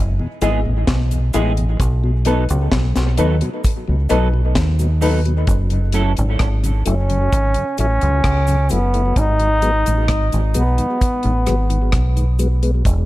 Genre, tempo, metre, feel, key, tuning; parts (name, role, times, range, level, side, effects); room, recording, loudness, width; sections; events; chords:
dub reggae; 65 BPM; 4/4; straight; F# dorian; A4 = 440 Hz
deep dub fingered electric bass; bass; 0.0-13.1 s; E1 to D#2; -17 LUFS; equal
mellow tonewheel organ; accompaniment; 0.2-12.7 s; E2 to E4; -26 LUFS; left 3 dB; slow rotary speaker, dub echo
clean electric guitar; accompaniment; 0.4-6.1 s; F#3 to A4; -26 LUFS; right 6 dB; analog chorus, dub echo
dark upright piano; stabs; 0.4-5.2 s; D#4 to D#5; -25 LUFS; left 5 dB; dub echo
deep reggae drum kit; drums; 0.4-13.1 s; hi-hat, kick drum, rim click, snare drum; -20 LUFS; equal
cabasa; percussion; 0.4-13.1 s; -36 LUFS; right 2 dB
clear trombone; melody; 6.9-12.4 s; B3 to D#4; -20 LUFS; equal; dub echo
small room ambience; -15 LUFS; side -17 dB against mid
0.0-5.5 A section; 5.5-13.1 B section
break 0.0-5.5
0.0 Emaj7; 1.8 B7; 5.5 F#m7; 9.2 G#m7